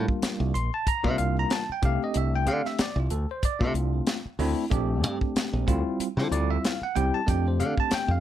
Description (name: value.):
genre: electric jazz fusion.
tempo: 94 BPM.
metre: 4/4.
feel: swing 56% on 16ths.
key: F major.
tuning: A4 = 440 Hz.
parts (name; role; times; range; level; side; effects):
bell-like tine electric piano; accompaniment; 0.0-8.2 s; G3 to C6; -28 LUFS; right 1 dB; slow stereo tremolo.
modern bright fingered electric bass; bass; 0.0-8.2 s; Bb1 to D3; -26 LUFS; equal; none.
tight funk drum kit; drums; 0.1-8.1 s; hi-hat, kick drum, snare drum; -28 LUFS; equal; none.
room: light reverb.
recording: none.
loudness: -24 LUFS.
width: side -11 dB against mid.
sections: 0.0-8.2 A section.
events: none.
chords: 0.0 C9sus4; 1.8 F69/C; 4.7 Bbmaj13; 5.7 Dm11; 7.3 F69.